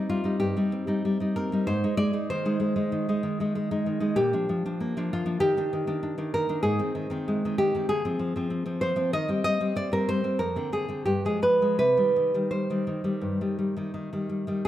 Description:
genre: romantic piece for solo classical guitar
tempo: 82-100 BPM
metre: 4/4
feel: rubato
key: C minor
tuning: A4 = 441 Hz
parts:
  - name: nylon-string guitar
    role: solo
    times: 0.0-14.7 s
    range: F2 to Eb5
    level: -24 LUFS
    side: equal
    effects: none
room: moderate recital hall reverb, RT60 1.6 s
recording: none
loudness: -24 LUFS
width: side -12 dB against mid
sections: 0.0-14.6 A section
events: none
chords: 0.0 Cm; 1.7 Ab; 4.2 Bb; 5.4 Ebmaj7; 6.6 Ab; 7.9 Dm7b5 (rootless); 9.1 Cm/Eb; 10.4 Dm7b5/F; 11.1 G7b9; 11.8 Cm

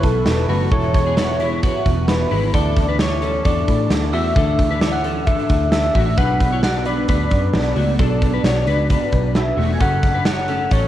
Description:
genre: jangly indie pop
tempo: 132 BPM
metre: 4/4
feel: straight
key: unclear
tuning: A4 = 441 Hz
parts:
  - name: warm velvety synth lead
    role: melody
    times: 0.0-10.9 s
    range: A4 to G#5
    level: -23 LUFS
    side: left 1 dB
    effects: chorus
  - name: glockenspiel with hard plastic mallets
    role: second line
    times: 0.0-10.9 s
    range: A5 to G#6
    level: -30 LUFS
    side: right 10 dB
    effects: none
  - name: picked steel-string acoustic guitar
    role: accompaniment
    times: 0.0-10.9 s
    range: F#2 to E4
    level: -26 LUFS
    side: right 10 dB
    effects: none
  - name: electric guitar at the edge of break-up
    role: arpeggios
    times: 0.0-10.9 s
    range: G#3 to D5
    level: -24 LUFS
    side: left 10 dB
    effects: analog chorus
  - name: vintage muted picked electric bass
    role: bass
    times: 0.0-10.9 s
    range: E1 to A2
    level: -21 LUFS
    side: equal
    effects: none
  - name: big rock drum kit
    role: drums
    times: 0.0-10.8 s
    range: hi-hat, kick drum, snare drum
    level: -20 LUFS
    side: equal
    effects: cassette tape
  - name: group handclap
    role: percussion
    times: 10.3-10.4 s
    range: none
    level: barely audible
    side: none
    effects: none
room: light reverb, small room ambience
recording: home recording on cassette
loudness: -15 LUFS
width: side -12 dB against mid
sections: 0.0-10.9 A section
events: none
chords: 0.0 Esus2; 2.5 Dsus2; 6.2 Bm; 9.8 F#m

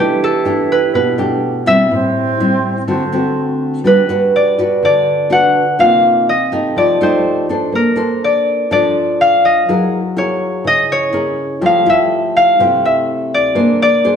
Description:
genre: bossa nova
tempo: 124 BPM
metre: 4/4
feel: straight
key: E minor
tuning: A4 = 440 Hz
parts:
  - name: concert harp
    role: melody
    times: 0.0-14.2 s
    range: G4 to F#5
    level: -13 LUFS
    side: left 1 dB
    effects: none
  - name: bright alto flute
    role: second line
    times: 0.0-3.6 s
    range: C4 to E4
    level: -21 LUFS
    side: right 4 dB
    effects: none
  - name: nylon-string guitar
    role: accompaniment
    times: 0.0-14.2 s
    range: A2 to C5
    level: -16 LUFS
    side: equal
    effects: none
room: wet large studio reverb, RT60 1.4 s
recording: band playing live in one room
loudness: -11 LUFS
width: side -7 dB against mid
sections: 0.0-3.8 A section; 3.8-14.2 B section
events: none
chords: 0.0 Em7; 1.9 Am7; 2.9 D7; 3.8 Gmaj7; 5.8 Cm7; 6.8 F9; 7.7 Bbmaj9; 9.7 F#9; 11.6 Fmaj9; 13.6 Bb9

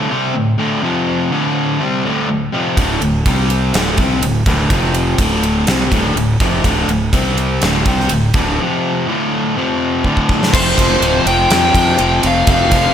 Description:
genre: hard rock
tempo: 124 BPM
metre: 4/4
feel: straight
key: D minor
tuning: A4 = 437 Hz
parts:
  - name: cranked stack guitar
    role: riff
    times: 0.0-12.9 s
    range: D2 to C4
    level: -15 LUFS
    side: left 1 dB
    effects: overdrive, slapback echo
  - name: fuzz fingered electric bass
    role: bass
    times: 2.8-12.9 s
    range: D1 to F2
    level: -19 LUFS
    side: equal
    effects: overdrive
  - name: gated 80s drum kit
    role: drums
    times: 2.8-12.8 s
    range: crash cymbal, kick drum, ride cymbal, snare drum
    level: -17 LUFS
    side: right 1 dB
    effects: none
  - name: bluesy overdriven lead guitar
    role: melody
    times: 10.5-12.9 s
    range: C5 to G5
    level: -15 LUFS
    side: left 1 dB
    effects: distortion
room: moderate concert hall reverb, RT60 1.8 s, studio ambience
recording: big arena sound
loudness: -12 LUFS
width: side -9 dB against mid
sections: 0.0-10.5 A section; 10.5-12.9 B section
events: drum fill 10.1-10.5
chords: 0.0 D5; 0.8 F5; 1.3 Dm; 3.2 C5; 3.7 D5; 4.7 F5; 5.2 Dm; 7.1 C5; 7.6 D5; 8.6 F5; 9.1 D5; 9.6 F5; 10.1 D5; 10.5 F5

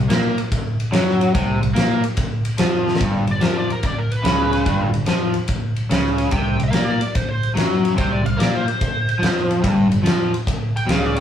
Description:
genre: blues rock power trio and southern rock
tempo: 145 BPM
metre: 4/4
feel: swing 67% on 8ths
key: unclear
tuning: A4 = 441 Hz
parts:
  - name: overdriven semi-hollow guitar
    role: riff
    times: 0.0-11.2 s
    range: G2 to A#3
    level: -20 LUFS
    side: equal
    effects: none
  - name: growling fingered electric bass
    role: bass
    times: 0.0-11.2 s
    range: G1 to A#2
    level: -24 LUFS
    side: left 1 dB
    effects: overdrive
  - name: huge arena drum kit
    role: drums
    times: 0.1-11.2 s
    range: kick drum, ride cymbal, snare drum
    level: -20 LUFS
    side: equal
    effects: none
  - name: dark smooth lead guitar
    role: melody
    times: 3.3-11.2 s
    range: Bb4 to G5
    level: -25 LUFS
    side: equal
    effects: wah, overdrive
room: moderate large studio reverb, RT60 1.0 s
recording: band playing live in one room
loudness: -17 LUFS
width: side -9 dB against mid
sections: 0.0-3.0 A section; 3.0-11.2 B section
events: drum fill 2.8; lead electric guitar solo 3.0-11.2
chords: 0.0 F#maj7#11/B#; 3.0 G; 6.3 C9sus4; 9.6 N.C.

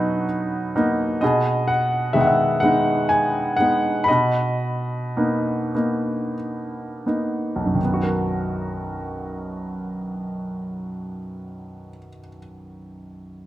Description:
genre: classical, lyrical solo piano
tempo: 27-44 BPM (dotted quarters)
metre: 6/8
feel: rubato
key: B major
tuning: A4 = 442 Hz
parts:
  - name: clear baby grand piano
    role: solo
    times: 0.0-13.5 s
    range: B1 to B5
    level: -21 LUFS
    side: equal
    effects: none
room: moderate recital hall reverb, RT60 1.5 s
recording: none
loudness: -20 LUFS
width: side -14 dB against mid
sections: 0.0-1.2 A section; 1.2-7.8 B section; 7.8-12.2 C section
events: slowing down 1.2-7.8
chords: 0.0 Bmaj7; 1.2 B6; 4.1 Bmaj7

